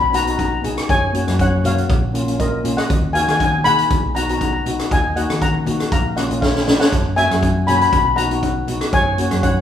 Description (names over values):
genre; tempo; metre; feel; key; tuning
calypso; 119 BPM; 4/4; straight; F# major; A4 = 440 Hz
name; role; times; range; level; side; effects
steel pan; melody; 0.0-9.6 s; A#4 to B5; -19 LUFS; left 2 dB; none
hollow-body short-scale fingered electric bass; bass; 0.0-9.6 s; F#1 to D#3; -23 LUFS; equal; none
steel pan; accompaniment; 0.1-9.5 s; A#3 to G#4; -23 LUFS; left 2 dB; none
street-band drum kit; drums; 0.1-9.6 s; hi-hat, kick drum, rim click, snare drum; -20 LUFS; equal; none
congas; percussion; 0.1-9.6 s; none; -32 LUFS; equal; none
room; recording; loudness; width
wet large studio reverb, RT60 1.2 s; band playing live in one room, small room ambience; -15 LUFS; side -9 dB against mid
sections
0.0-9.6 A section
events
drum fill 6.4-6.9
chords
0.0 B; 0.9 F#add9; 1.9 A#m; 2.9 D#m; 3.9 B; 4.9 D#m; 5.9 A#m; 6.9 F#7; 7.9 B; 8.9 F#add9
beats
0.39 | 0.89 1.40 1.90 2.40 | 2.90 3.41 3.91 4.41 | 4.91 5.42 5.92 6.42 | 6.92 7.42 7.93 8.43 | 8.93 9.43